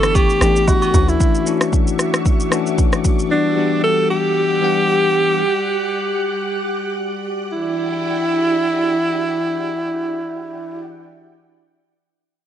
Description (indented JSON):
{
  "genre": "amapiano",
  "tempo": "114 BPM",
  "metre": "4/4",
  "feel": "swing 55% on 16ths",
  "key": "E dorian",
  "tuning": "A4 = 442 Hz",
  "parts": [
    { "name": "breathy alto saxophone", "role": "melody", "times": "0.0-10.8 s", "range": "D4 to A4", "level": "-18 LUFS", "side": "right 1 dB", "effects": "analog delay" },
    { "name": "bell-like tine electric piano", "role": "accompaniment", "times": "0.0-5.4 s", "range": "E3 to F#5", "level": "-20 LUFS", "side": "left 11 dB", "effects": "none" },
    { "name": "string machine, cellos", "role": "sustained chords", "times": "0.0-10.8 s", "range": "E4 to F#6", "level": "-24 LUFS", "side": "right 1 dB", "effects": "ensemble chorus, sidechain pumping" },
    { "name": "hollow log drum bass", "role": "bass", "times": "0.0-1.2 s", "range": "G1 to D2", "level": "-19 LUFS", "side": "right 1 dB", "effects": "none" },
    { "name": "deep house drum kit", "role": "drums", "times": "0.0-3.3 s", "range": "kick drum, rim click, shaker", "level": "-17 LUFS", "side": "equal", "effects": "none" },
    { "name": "agogo bells and woodblock", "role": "percussion", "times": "0.1-0.9 s", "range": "none", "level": "-27 LUFS", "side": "right 8 dB", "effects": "none" }
  ],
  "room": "light reverb",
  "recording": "nothing above 10.5 kHz",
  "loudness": "-15 LUFS",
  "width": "side -10 dB against mid",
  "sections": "0.0-7.5 A section; 7.5-11.7 B section",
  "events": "none",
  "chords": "0.0 A9sus4; 0.9 Dmaj9; 3.3 Em9"
}